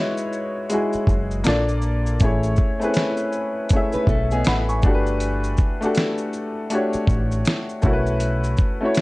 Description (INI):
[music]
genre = lo-fi hip hop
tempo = 80 BPM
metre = 4/4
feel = swing 61% on 16ths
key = unclear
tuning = A4 = 440 Hz
[part]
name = warm upright piano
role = accompaniment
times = 0.0-9.0 s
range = G#3 to C#6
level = -22 LUFS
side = left 1 dB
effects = cassette tape
[part]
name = dusty soul sampler-style drum kit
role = drums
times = 0.2-9.0 s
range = hi-hat, kick drum, shaker, snare drum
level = -20 LUFS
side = equal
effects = vintage 12-bit sampler grit
[part]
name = deep dub picked electric bass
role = bass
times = 0.9-8.5 s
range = F#1 to B1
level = -23 LUFS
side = equal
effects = none
[part]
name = nylon-string guitar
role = second line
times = 3.9-4.8 s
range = B3 to B4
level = -29 LUFS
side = right 1 dB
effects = tape echo
[sound]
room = light reverb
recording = dark, warm production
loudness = -19 LUFS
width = side -21 dB against mid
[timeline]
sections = 0.0-9.0 A section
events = none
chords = 0.0 Emaj9; 1.5 A#maj7; 2.2 Amaj7; 4.8 Gmaj9; 7.8 B9sus4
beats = 0.71 1.46 | 2.21 2.96 3.71 4.46 | 5.21 5.96 6.71 7.46 | 8.21 8.96